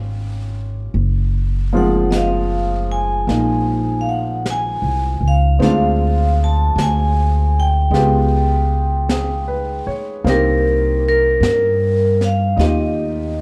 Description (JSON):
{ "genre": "jazz ballad", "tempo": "52 BPM", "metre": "4/4", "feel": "swing 67% on 8ths", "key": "unclear", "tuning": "A4 = 440 Hz", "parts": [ { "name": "clear grand piano", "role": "accompaniment", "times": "0.0-13.4 s", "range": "F3 to Db5", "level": "-24 LUFS", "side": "equal", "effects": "none" }, { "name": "upright bass", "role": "bass", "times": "0.0-13.4 s", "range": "Gb1 to G2", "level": "-20 LUFS", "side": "equal", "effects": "none" }, { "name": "jazz brush drum kit", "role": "drums", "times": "1.0-13.4 s", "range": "brushed snare drum, hi-hat, snare drum", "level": "-29 LUFS", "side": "equal", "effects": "none" }, { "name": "vibraphone with medium hard mallets", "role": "melody", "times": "1.8-13.4 s", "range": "Bb4 to A5", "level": "-22 LUFS", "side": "equal", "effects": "none" } ], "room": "light reverb", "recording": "dark, warm production", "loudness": "-17 LUFS", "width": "mono", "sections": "0.0-13.4 A section", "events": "none", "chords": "0.0 Db13; 0.9 Gbmaj9#11; 5.6 Dm7b5; 7.9 Db7#11; 10.3 Cm7" }